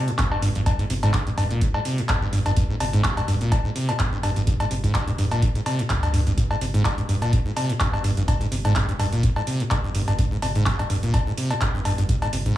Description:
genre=acid house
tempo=126 BPM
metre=4/4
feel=swing 55% on 16ths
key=G phrygian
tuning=A4 = 440 Hz
part: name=acid bass, saw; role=riff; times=0.0-12.5 s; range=G2 to C3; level=-23 LUFS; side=equal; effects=sidechain pumping, dub echo
part: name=electro analog drum machine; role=drums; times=0.1-12.5 s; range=cowbell, handclaps, hi-hat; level=-28 LUFS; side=left 1 dB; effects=none
part: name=round analog bass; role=bass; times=0.2-12.6 s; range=D1 to D2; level=-28 LUFS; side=equal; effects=sidechain pumping
part: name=electronic kick drum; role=drums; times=0.2-12.5 s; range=none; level=-24 LUFS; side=equal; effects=none
room=light reverb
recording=small room ambience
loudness=-20 LUFS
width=side -13 dB against mid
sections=0.0-12.6 A section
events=none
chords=0.0 G5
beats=0.18 | 0.66 1.14 1.61 2.09 | 2.57 3.04 3.52 4.00 | 4.47 4.95 5.42 5.90 | 6.38 6.85 7.33 7.80 | 8.28 8.76 9.23 9.71 | 10.19 10.66 11.14 11.61 | 12.09 12.57

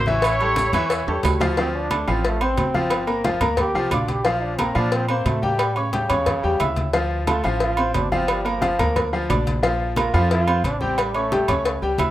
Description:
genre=latin, salsa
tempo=178 BPM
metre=4/4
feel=straight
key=D minor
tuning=A4 = 440 Hz
part: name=bright trumpet section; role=melody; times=0.0-1.2 s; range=E4 to C#5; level=-24 LUFS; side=right 1 dB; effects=analog delay
part: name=upright bass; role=bass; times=0.0-12.1 s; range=G1 to Bb2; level=-25 LUFS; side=equal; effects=none
part: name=bright grand piano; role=accompaniment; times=0.1-12.1 s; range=E3 to E6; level=-23 LUFS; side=left 2 dB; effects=none
part: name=congas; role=percussion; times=0.1-12.1 s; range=none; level=-28 LUFS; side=left 1 dB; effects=none
part: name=maracas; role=percussion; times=0.1-1.6 s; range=none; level=-41 LUFS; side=right 3 dB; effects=none
part: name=agogo bells and timbales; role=percussion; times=0.2-12.1 s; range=none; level=-27 LUFS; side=right 6 dB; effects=none
part: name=cowbell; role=percussion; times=0.2-12.1 s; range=none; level=-28 LUFS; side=left 3 dB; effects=none
part: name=bright trombone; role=melody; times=1.6-11.8 s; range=C#3 to G4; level=-26 LUFS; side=right 2 dB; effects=none
room=light reverb, small room ambience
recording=rough home demo mix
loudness=-18 LUFS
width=side -14 dB against mid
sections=0.0-1.6 A section; 1.6-12.1 B section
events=drum fill 1.1-1.6; trombone solo 1.6-12.1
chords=0.2 A7; 1.6 Dm7; 2.9 Gm7; 4.3 Bbsus2; 5.6 A7; 6.9 Dm7; 8.3 Gm7; 9.6 Bbsus2; 11.0 A7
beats=| 0.23 0.57 0.90 1.24 | 1.57 1.91 2.24 2.58 | 2.91 3.25 3.58 3.92 | 4.25 4.59 4.92 5.26 | 5.59 5.93 6.27 6.60 | 6.94 7.28 7.61 7.95 | 8.29 8.62 8.96 9.30 | 9.63 9.97 10.31 10.64 | 10.98 11.32 11.65 11.99

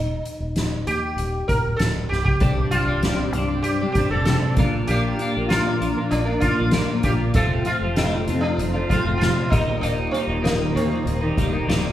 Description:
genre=psychedelic rock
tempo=97 BPM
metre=4/4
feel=straight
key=unclear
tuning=A4 = 438 Hz
part: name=sitar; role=melody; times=0.0-11.9 s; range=Bb3 to Bb4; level=-26 LUFS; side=right 1 dB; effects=none
part: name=fingered electric bass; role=bass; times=0.0-11.9 s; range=C1 to F2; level=-27 LUFS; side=equal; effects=none
part: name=soft-mallet drum kit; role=drums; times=0.3-11.8 s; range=hi-hat, kick drum, snare drum, toms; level=-24 LUFS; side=equal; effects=none
part: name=tonewheel organ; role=sustained chords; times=2.4-11.9 s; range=Bb3 to Eb6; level=-36 LUFS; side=right 4 dB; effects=slow rotary speaker, overdrive, chorus vibrato
part: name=twelve-string electric guitar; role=riff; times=2.4-11.9 s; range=C2 to Bb4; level=-23 LUFS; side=left 2 dB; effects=phaser
room=wet large studio reverb, RT60 1.2 s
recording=band playing live in one room, vinyl crackle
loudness=-19 LUFS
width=side -12 dB against mid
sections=0.0-11.9 A section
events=drum fill 2.1-2.4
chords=0.0 Eb6; 2.4 Csus2; 4.6 Bb; 7.3 F; 9.5 Eb6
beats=0.56 1.17 1.79 | 2.40 3.02 3.64 4.25 | 4.87 5.49 6.11 6.73 | 7.35 7.96 8.58 9.20 | 9.82 10.44 11.06 11.68

